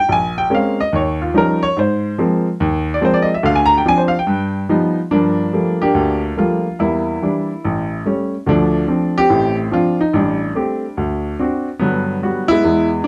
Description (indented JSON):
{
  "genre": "solo jazz",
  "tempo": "143 BPM",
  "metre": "4/4",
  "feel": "swing 64% on 8ths",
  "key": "G minor from 5.1 s",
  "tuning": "A4 = 440 Hz",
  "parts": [
    { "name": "clear baby grand piano", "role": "solo", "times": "0.0-13.1 s", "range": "A1 to Bb5", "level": "-17 LUFS", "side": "equal", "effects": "none" }
  ],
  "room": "light reverb",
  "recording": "dark, warm production",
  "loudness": "-17 LUFS",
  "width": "mono",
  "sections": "0.0-5.1 A section; 5.1-13.1 B section",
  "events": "grand piano solo 0.0-5.1",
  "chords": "0.1 Bbm9; 0.9 Eb9; 1.8 Ab69; 3.4 Dm7b5; 4.3 G7b13; 5.1 Gm9; 6.8 Em7b5; 7.6 A7; 8.5 Dm7; 10.1 Am7; 11.0 D7; 11.8 Gmaj7",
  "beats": "| 0.08 0.50 0.92 1.34 | 1.76 2.17 2.59 3.01 | 3.43 3.85 4.27 4.69 | 5.11 5.53 5.95 6.36 | 6.78 7.20 7.62 8.04 | 8.46 8.88 9.30 9.71 | 10.13 10.55 10.97 11.39 | 11.80 12.22 12.64 13.06"
}